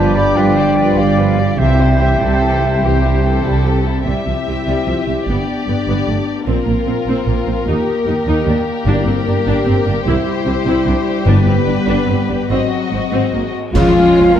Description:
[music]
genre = cinematic, heroic adventure film score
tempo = 99 BPM (dotted quarters)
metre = 12/8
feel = straight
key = C major from 4.1 s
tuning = A4 = 441 Hz
[part]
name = warm symphonic violin section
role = melody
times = 0.0-14.3 s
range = F4 to E5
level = -23 LUFS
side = left 5 dB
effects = none
[part]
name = bright oboe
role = second line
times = 0.0-3.9, 13.8-14.4 s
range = G4 to F5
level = -28 LUFS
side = right 1 dB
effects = none
[part]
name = mellow hollow silver concert flute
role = second line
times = 0.0-3.4, 13.7-14.4 s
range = E5 to B5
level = -21 LUFS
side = left 1 dB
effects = none
[part]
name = warm clarinet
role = second line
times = 0.0-3.8, 13.8-14.4 s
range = F4 to G4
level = -26 LUFS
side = left 3 dB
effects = none
[part]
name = warm symphonic violin section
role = second line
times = 0.0-14.4 s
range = E4 to G4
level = -26 LUFS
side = left 4 dB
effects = none
[part]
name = warm symphonic viola section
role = accompaniment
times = 0.0-14.4 s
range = Db3 to E4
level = -23 LUFS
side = right 1 dB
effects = none
[part]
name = dark trombone section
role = sustained chords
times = 0.0-3.9, 14.2 s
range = G2 to Db4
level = -22 LUFS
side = right 5 dB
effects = none
[part]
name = mellow French horn section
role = sustained chords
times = 0.0-14.4 s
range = Gb3 to Bb4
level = -19 LUFS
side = left 3 dB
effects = none
[part]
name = dark trumpet section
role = stabs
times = 0.0-3.8, 13.7-14.3 s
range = Ab3 to G5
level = -22 LUFS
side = equal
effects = none
[part]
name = rich symphonic double bass section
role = bass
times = 0.0-14.2 s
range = G1 to Eb2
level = -19 LUFS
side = right 3 dB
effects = none
[part]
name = warm symphonic cello section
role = bass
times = 0.0-14.3 s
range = Eb2 to F3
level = -20 LUFS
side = right 2 dB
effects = none
[part]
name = timpani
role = percussion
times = 1.6-2.2, 8.9-11.8 s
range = G2 to C3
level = -20 LUFS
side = left 2 dB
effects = none
[part]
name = cymbal swell, clash cymbals and concert bass drum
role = percussion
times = 11.3-14.4 s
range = none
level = -23 LUFS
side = equal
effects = none
[part]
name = concert snare drum, clash cymbals and concert bass drum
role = drums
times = 13.8-14.4 s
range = none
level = -23 LUFS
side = equal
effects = none
[sound]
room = moderate scoring stage reverb, RT60 1.8 s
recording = none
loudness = -13 LUFS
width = side -9 dB against mid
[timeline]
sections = 0.0-4.1 A section; 4.1-13.8 B section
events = band accent 13.8-14.2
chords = 0.0 G7; 1.6 C; 5.3 G; 6.5 Bbsus2; 7.7 Eb; 8.9 Gm; 10.1 C; 11.3 G; 12.5 Ab7; 13.8 Db

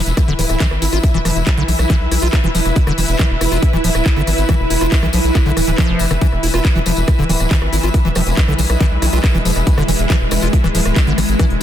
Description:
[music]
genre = psychedelic trance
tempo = 139 BPM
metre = 4/4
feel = straight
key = E major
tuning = A4 = 438 Hz
[part]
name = swarming drone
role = sustained chords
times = 0.0-11.6 s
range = E3 to E4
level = -22 LUFS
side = equal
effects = built-in reverb, phaser, sidechain pumping
[part]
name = muted studio string section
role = texture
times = 0.0-11.6 s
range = E4 to E5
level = -24 LUFS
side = left 1 dB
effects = sidechain pumping
[part]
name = round analog bass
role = bass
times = 0.1-11.6 s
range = D1 to B1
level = -18 LUFS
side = equal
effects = none
[part]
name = drum and bass drum kit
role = drums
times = 0.1-11.6 s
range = handclaps, hi-hat, rim click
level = -24 LUFS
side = left 1 dB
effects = none
[part]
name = tambourine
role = percussion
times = 0.1-11.6 s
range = none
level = -28 LUFS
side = left 4 dB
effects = none
[part]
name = liquid acid bass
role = riff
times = 0.2-11.5 s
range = D3 to F4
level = -21 LUFS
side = equal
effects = chorus, auto-pan, sidechain pumping, digital delay
[part]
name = electronic kick drum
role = drums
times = 0.2-11.5 s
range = none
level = -14 LUFS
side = equal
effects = none
[part]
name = vowel-sweep wobble bass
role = second line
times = 0.4-1.1, 7.3-9.2 s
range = B3 to D4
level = -33 LUFS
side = right 3 dB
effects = none
[part]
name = riser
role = sound effects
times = 11.1-11.6 s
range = none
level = -38 LUFS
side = equal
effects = none
[sound]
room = light reverb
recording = dense, heavily limited modern master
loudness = -13 LUFS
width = side -11 dB against mid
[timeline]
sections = 0.0-11.6 A section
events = none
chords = 0.0 E5

